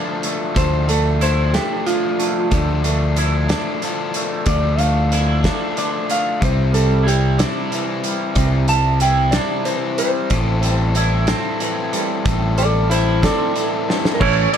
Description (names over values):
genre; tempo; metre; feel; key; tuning
indie rock; 62 BPM (dotted quarters); 6/8; straight; D minor; A4 = 444 Hz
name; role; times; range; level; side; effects
clean electric guitar; melody; 0.0-14.6 s; E4 to A5; -21 LUFS; right 1 dB; none
overdriven electric guitar; riff; 0.0-14.6 s; E3 to A4; -24 LUFS; left 7 dB; none
twangy electric guitar; riff; 0.0-14.6 s; A2 to E4; -24 LUFS; right 7 dB; wide subtle chorus, digital delay
loose indie drum kit; drums; 0.2-14.6 s; crash cymbal, hi-hat, kick drum, ride cymbal, snare drum; -23 LUFS; equal; none
picked electric bass; bass; 0.6-14.5 s; A1 to D2; -18 LUFS; equal; none
room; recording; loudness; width
little or no reverb; dark, warm production; -16 LUFS; side -8 dB against mid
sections
0.0-14.2 A section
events
clean electric guitar solo 0.0-14.2; drum fill 13.9-14.2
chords
0.0 Dmadd9; 6.4 Cadd9; 10.3 Am7